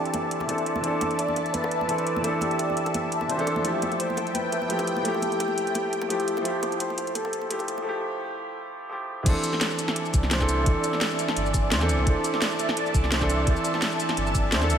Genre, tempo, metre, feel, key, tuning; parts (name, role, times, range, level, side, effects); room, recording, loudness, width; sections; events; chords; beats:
liquid drum and bass; 171 BPM; 4/4; swing 53% on 16ths; C major; A4 = 441 Hz
breathy flugelhorn; melody; 0.0-7.9 s; G4 to D5; -33 LUFS; equal; low-pass filter, ping-pong delay
warm concert grand piano; accompaniment; 0.0-14.8 s; E3 to C5; -27 LUFS; right 1 dB; tape echo
lush unison pad; sustained chords; 0.0-14.8 s; D5 to A5; -30 LUFS; equal; chorus, phaser
sub bass with octave; bass; 0.1-14.8 s; G1 to E2; -26 LUFS; equal; high-pass filter
garage drum kit; drums; 0.1-14.8 s; cabasa, crash cymbal, hi-hat, snare drum; -28 LUFS; equal; high-pass filter on hats, studio reverb, high-pass filter on cymbals, high-pass filter on perc, high-pass filter on snare
bongos and congas; percussion; 0.1-7.8 s; -36 LUFS; equal
electronic kick drum; drums; 9.3-14.4 s; -24 LUFS; equal; studio reverb
wet huge ambient reverb, RT60 4.3 s; dreamy mix soaked in reverb, high-pass filter; -23 LUFS; side -8 dB against mid
0.0-9.3 A section; 9.3-14.8 B section
build-up 0.0-9.3; filter sweep on flugelhorn 0.0-9.3; break 7.9-9.3; drop 9.3-14.8
0.0 C69; 3.6 Fmaj9; 9.3 C69
0.14 0.49 | 0.84 1.19 1.54 1.89 | 2.24 2.59 2.94 3.29 | 3.65 4.00 4.35 4.70 | 5.05 5.40 5.75 6.10 | 6.45 6.80 7.16 7.51 | 7.86 8.21 8.56 8.91 | 9.26 9.61 9.96 10.31 | 10.66 11.01 11.37 11.72 | 12.07 12.42 12.77 13.12 | 13.47 13.82 14.17 14.52